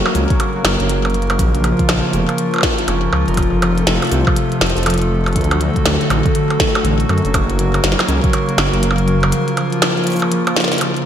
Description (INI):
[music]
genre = IDM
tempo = 121 BPM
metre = 4/4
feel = swing 62% on 16ths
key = unclear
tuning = A4 = 441 Hz
[part]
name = hollow soft pad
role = sustained chords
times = 0.0-11.1 s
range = C3 to Bb4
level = -19 LUFS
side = left 1 dB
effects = chorus, vintage 12-bit sampler grit
[part]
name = concert harp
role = arpeggios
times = 0.0-11.1 s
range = D3 to Db5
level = -22 LUFS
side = right 1 dB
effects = ping-pong delay
[part]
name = dark detuned saw bass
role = bass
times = 0.0-9.3 s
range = F1 to F#2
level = -18 LUFS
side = equal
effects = none
[part]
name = glitchy drum kit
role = drums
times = 0.1-11.0 s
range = cabasa, hi-hat, percussion blips, snare drum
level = -19 LUFS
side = equal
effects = studio reverb, gated reverb, ping-pong delay
[part]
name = electronic kick drum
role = drums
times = 0.3-8.3 s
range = none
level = -19 LUFS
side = equal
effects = studio reverb
[sound]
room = moderate lush hall reverb, RT60 2.0 s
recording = bright 1980s-style digital production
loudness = -13 LUFS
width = side -9 dB against mid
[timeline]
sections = 0.0-11.1 A section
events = none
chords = 0.0 Gb; 1.4 Bbm; 3.4 F; 5.4 D; 7.3 Gb; 9.3 Bbm